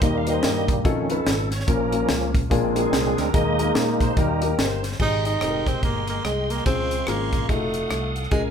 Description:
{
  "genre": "uptempo gospel",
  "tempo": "145 BPM",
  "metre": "4/4",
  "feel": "swing 60% on 8ths",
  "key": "Ab major",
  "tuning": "A4 = 440 Hz",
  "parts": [
    { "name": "dark baby grand piano", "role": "accompaniment", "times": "0.0-8.5 s", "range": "Ab2 to C5", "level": "-26 LUFS", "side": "left 5 dB", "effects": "none" },
    { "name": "bright tonewheel organ", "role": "sustained chords", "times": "0.0-8.5 s", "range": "Eb3 to Eb6", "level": "-26 LUFS", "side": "right 2 dB", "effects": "overdrive, chorus vibrato, stopped rotary speaker" },
    { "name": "fingered electric bass", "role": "bass", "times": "0.0-8.5 s", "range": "F1 to Bb2", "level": "-28 LUFS", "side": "equal", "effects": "none" },
    { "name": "tight funk drum kit", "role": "drums", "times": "0.0-8.4 s", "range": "crash cymbal, hi-hat, kick drum, rim click, snare drum", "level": "-24 LUFS", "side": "equal", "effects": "none" },
    { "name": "breathy tenor saxophone", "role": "melody", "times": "5.0-8.4 s", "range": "Ab3 to Eb4", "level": "-26 LUFS", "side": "right 2 dB", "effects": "none" }
  ],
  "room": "moderate large studio reverb, RT60 1.2 s",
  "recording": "band playing live in one room",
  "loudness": "-20 LUFS",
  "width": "side -7 dB against mid",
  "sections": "0.0-5.0 A section; 5.0-8.5 B section",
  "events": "tonewheel organ solo 0.0-5.0",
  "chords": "0.0 Eb; 0.9 F7alt; 1.7 Bbm; 2.5 Bb7; 3.3 Ebsus4; 4.2 Eb; 5.0 Abmaj7; 6.7 Dbmaj7; 7.5 F7b9"
}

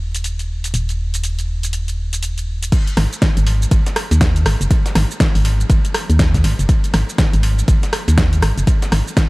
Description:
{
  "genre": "deep house",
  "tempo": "121 BPM",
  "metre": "4/4",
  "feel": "swing 61% on 16ths",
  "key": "unclear",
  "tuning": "A4 = 439 Hz",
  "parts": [
    { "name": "organ-like FM bass", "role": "bass", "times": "0.0-9.0 s", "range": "D#1 to D#2", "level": "-16 LUFS", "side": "equal", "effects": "tube saturation, sidechain pumping" },
    { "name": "deep house drum kit", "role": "drums", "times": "0.1-9.3 s", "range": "crash cymbal, hi-hat, rim click, shaker, snare drum", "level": "-22 LUFS", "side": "equal", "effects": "none" },
    { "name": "dusty soul sampler-style drum kit", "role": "drums", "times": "2.7-9.3 s", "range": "ride cymbal, snare drum", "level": "-31 LUFS", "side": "right 1 dB", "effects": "sidechain pumping on cymbals, high-pass filter on cymbals, high-pass filter on snare, high-pass filter on room" },
    { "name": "electronic kick drum", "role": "drums", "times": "2.7-9.3 s", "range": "none", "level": "-15 LUFS", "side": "equal", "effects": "none" }
  ],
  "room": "little or no reverb",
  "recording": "vinyl crackle",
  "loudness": "-14 LUFS",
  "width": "side -23 dB against mid",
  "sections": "0.0-2.7 A section; 2.7-9.3 B section",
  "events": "drop 2.7-9.3",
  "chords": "none"
}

